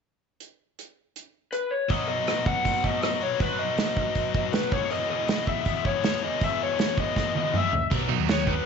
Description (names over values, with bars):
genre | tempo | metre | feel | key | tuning
indie rock | 160 BPM | 4/4 | straight | B major | A4 = 440 Hz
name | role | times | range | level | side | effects
loose indie drum kit | drums | 0.4-8.6 s | crash cymbal, hi-hat, kick drum, rim click, snare drum, toms | -27 LUFS | right 2 dB | none
lead guitar through a small cranked amp | melody | 1.5-8.7 s | B4 to F#5 | -27 LUFS | left 2 dB | overdrive, slapback echo
biting overdriven guitar | riff | 1.9-8.6 s | E2 to G#4 | -30 LUFS | left 12 dB | none
hollow-body short-scale picked electric bass | bass | 7.9-8.6 s | B1 to B2 | -28 LUFS | right 2 dB | none
distorted electric guitar | riff | 8.1-8.5 s | D#3 to D#4 | -29 LUFS | right 16 dB | overdrive, wide subtle chorus
room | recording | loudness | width
moderate echo chamber reverb, RT60 1.6 s, studio reverb | 1960s-style stereo with parts hard left and right, nothing above 7.7 kHz | -23 LUFS | side -6 dB against mid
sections
0.4-1.9 A section; 1.9-7.9 B section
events
drum fill 7.2-7.9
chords
0.4 N.C.; 1.9 B; 4.7 E; 7.9 B